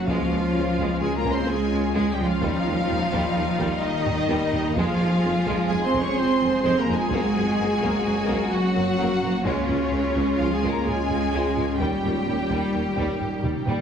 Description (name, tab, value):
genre	cinematic, hybrid orchestral and electronic film score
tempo	128 BPM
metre	5/4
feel	straight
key	unclear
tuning	A4 = 440 Hz
part	warm symphonic violin section	melody	0.0-13.6 s	Db5 to Db6	-30 LUFS	left 2 dB	none
part	clear symphonic violin section	second line	0.0-13.8 s	G3 to Ab4	-31 LUFS	left 1 dB	none
part	rich symphonic viola section	accompaniment	0.0-13.6 s	Db4 to Db5	-30 LUFS	right 2 dB	none
part	ethereal airy pad	sustained chords	0.0-13.8 s	G3 to F5	-30 LUFS	left 1 dB	ensemble chorus, built-in reverb
part	warm French horn section	sustained chords	0.0-13.7 s	Db3 to Db4	-28 LUFS	left 2 dB	none
part	rich studio cello section	bass	0.0-13.7 s	Db3 to Db4	-29 LUFS	right 3 dB	none
part	warm sub bass	bass	0.0-13.8 s	Eb1 to Db2	-36 LUFS	equal	none
part	rich symphonic double bass section	bass	0.1-13.7 s	Db2 to Gb2	-33 LUFS	right 3 dB	none
part	warm tuba	bass	0.1-13.8 s	F1 to Eb2	-31 LUFS	right 3 dB	none
part	taiko ensemble	drums	0.1-13.8 s	none	-34 LUFS	equal	none
room	wet scoring stage reverb, RT60 1.7 s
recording	heavily compressed radio sound, small room ambience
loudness	-21 LUFS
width	side -7 dB against mid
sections	0.0-13.8 A section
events	drum fill 4.1-4.8, 13.4-13.8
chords	0.1 Db; 2.4 Eb; 4.8 Fm; 7.1 Gb; 9.5 Db; 11.8 Eb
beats	| 0.08 0.55 1.01 1.48 1.95 | 2.42 2.89 3.36 3.83 4.30 | 4.76 5.23 5.70 6.17 6.64 | 7.11 7.58 8.05 8.52 8.98 | 9.45 9.92 10.39 10.86 11.33 | 11.80 12.27 12.73 13.20 13.67